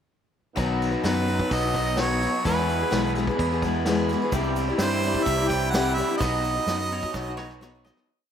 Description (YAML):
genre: folk rock and heartland rock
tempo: 128 BPM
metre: 4/4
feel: straight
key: unclear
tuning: A4 = 440 Hz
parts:
  - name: tonewheel organ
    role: sustained chords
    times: 0.5-8.1 s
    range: B3 to C5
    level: -38 LUFS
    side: right 2 dB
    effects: none
  - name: picked steel-string acoustic guitar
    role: accompaniment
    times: 0.6-8.1 s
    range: B2 to D#5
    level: -27 LUFS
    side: left 4 dB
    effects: none
  - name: raw garage guitar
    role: riff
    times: 0.6-8.1 s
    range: E2 to G#4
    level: -29 LUFS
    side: right 1 dB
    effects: overdrive
  - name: fingered electric bass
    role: bass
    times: 0.6-7.9 s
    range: B1 to G2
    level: -29 LUFS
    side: right 1 dB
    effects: none
  - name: soft brush drum kit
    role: drums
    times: 0.6-8.1 s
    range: kick drum, ride cymbal, snare drum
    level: -32 LUFS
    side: right 1 dB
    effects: none
  - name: clear harmonica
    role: melody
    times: 1.0-7.6 s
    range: B4 to G5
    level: -28 LUFS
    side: right 3 dB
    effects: analog delay
  - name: tube shaker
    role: percussion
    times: 4.3-8.0 s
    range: none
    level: -48 LUFS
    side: right 3 dB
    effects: none
  - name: mandolin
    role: second line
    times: 6.9-8.1 s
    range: C#5 to D#5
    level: -42 LUFS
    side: right 2 dB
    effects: none
room: moderate lush hall reverb, RT60 2.1 s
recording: rough home demo mix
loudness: -22 LUFS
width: side -8 dB against mid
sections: 0.6-8.1 pre-chorus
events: fade-out 6.2-8.1; drum fill 7.1-8.1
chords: 0.6 B; 2.5 E; 4.3 Cadd9; 6.2 B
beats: | 0.57 1.04 1.51 1.98 | 2.45 2.92 3.39 3.86 | 4.33 4.80 5.27 5.74 | 6.21 6.67 7.14 7.62